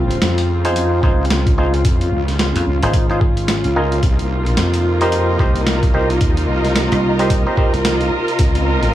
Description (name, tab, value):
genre	glitch hop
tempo	110 BPM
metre	4/4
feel	swing 59% on 16ths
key	C phrygian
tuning	A4 = 439 Hz
part	warm analog pad	sustained chords	0.0-8.9 s	C3 to F4	-24 LUFS	left 1 dB	chorus, tremolo, vintage 12-bit sampler grit, sidechain pumping
part	wobble bass	bass	0.0-8.9 s	C2 to F2	-18 LUFS	equal	chorus, overdrive
part	muted studio string section	texture	0.0-8.9 s	F4 to Eb5	-22 LUFS	equal	sidechain pumping
part	boom bap sampler-style drum kit	drums	0.1-8.9 s	hi-hat, rim click, snare drum	-22 LUFS	equal	none
part	auto-wah clav	stabs	0.6-7.7 s	Eb4 to C5	-21 LUFS	equal	vintage 12-bit sampler grit, sidechain pumping, tape echo
part	electronic kick drum	drums	1.0-8.5 s	none	-16 LUFS	equal	none
part	dry thumbed slap bass	bass	2.6-3.6, 6.9-7.4 s	Ab1 to F2	-19 LUFS	equal	none
room	light reverb, digital ambience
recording	small room ambience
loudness	-14 LUFS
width	side -13 dB against mid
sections	0.0-8.9 A section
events	none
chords	0.0 Dbmaj7; 4.0 Cm7; 8.4 Dbmaj7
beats	0.21 0.76 1.30 | 1.85 2.39 2.94 3.48 | 4.03 4.58 5.12 5.67 | 6.21 6.76 7.30 7.85 | 8.39 8.94